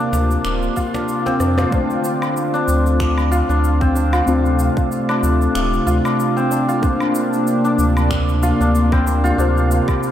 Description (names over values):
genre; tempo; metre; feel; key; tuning
organic downtempo; 94 BPM; 4/4; swing 55% on 16ths; D minor; A4 = 440 Hz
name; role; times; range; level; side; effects
muted felt-like synth keys; accompaniment; 0.0-10.1 s; A3 to C5; -25 LUFS; left 2 dB; chorus, sidechain pumping, diffuse ambient delay
warm analog pad; sustained chords; 0.0-10.1 s; C3 to F4; -21 LUFS; equal; chorus, sidechain pumping
santur; arpeggios; 0.0-10.1 s; C4 to F4; -20 LUFS; left 1 dB; diffuse ambient delay
warm sub bass; bass; 0.1-9.8 s; D1 to F2; -18 LUFS; equal; sidechain pumping
electronic shaker, finger snaps, rim click and woodblock; drums; 0.1-10.1 s; none; -29 LUFS; equal; none
cajon; percussion; 0.1-1.7 s; none; -36 LUFS; left 1 dB; none
electronic kick drum; drums; 0.8-10.0 s; none; -22 LUFS; equal; none
room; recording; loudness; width
wet cathedral reverb, RT60 4.8 s; dreamy mix soaked in reverb; -15 LUFS; side -11 dB against mid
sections
0.0-1.7 A section; 1.7-10.1 B section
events
drum fill 1.4-1.7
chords
0.0 C7sus4/D; 1.7 Dm7; 6.8 Bbadd9; 9.4 C7sus4/D